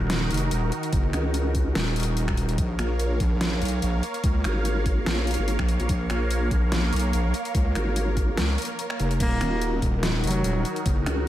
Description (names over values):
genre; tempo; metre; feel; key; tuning
heavy wobble dubstep; 145 BPM; 4/4; swing 54% on 16ths, half-time; Eb minor; A4 = 443 Hz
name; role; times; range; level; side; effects
supersaw pad; sustained chords; 0.0-11.3 s; Eb3 to F5; -30 LUFS; right 1 dB; phaser, sidechain pumping
wobble bass; bass; 0.0-11.0 s; Eb1 to Db2; -25 LUFS; equal; chorus, overdrive
dubstep drum kit; drums; 0.1-11.2 s; crash cymbal, finger snaps, hi-hat, snare drum; -31 LUFS; equal; overdrive, studio reverb
electronic kick drum; drums; 0.9-10.9 s; none; -25 LUFS; equal; overdrive, studio reverb
vowel-sweep wobble bass; bass; 1.1-11.3 s; Eb1 to Db2; -24 LUFS; equal; chorus, overdrive
rich cello; melody; 9.2-10.8 s; Gb3 to Bb3; -29 LUFS; right 1 dB; analog delay
room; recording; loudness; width
light reverb; none; -22 LUFS; side -13 dB against mid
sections
0.0-11.3 A section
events
kick drops out 8.8-9.2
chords
0.0 Ebm; 2.6 Bbm; 9.2 Ebm